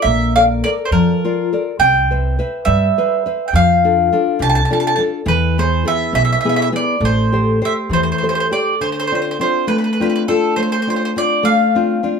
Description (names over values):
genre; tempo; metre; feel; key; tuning
italian folk, Italian serenade; 69 BPM (dotted quarters); 6/8; rubato; unclear; A4 = 440 Hz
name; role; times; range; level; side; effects
mandolin; melody; 0.0-12.1 s; A4 to A5; -16 LUFS; right 1 dB; none
upright bass; bass; 0.0-8.1 s; A1 to G2; -19 LUFS; right 1 dB; none
nylon-string guitar; accompaniment; 0.1-12.2 s; B2 to E5; -18 LUFS; left 3 dB; none
room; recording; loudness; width
light reverb; band playing live in one room; -14 LUFS; side -6 dB against mid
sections
0.0-8.8 A section; 8.8-12.2 B section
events
none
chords
0.1 Bbmaj7; 1.8 Cmaj7; 3.5 F6; 5.3 E; 7.0 Am7; 8.8 Dm7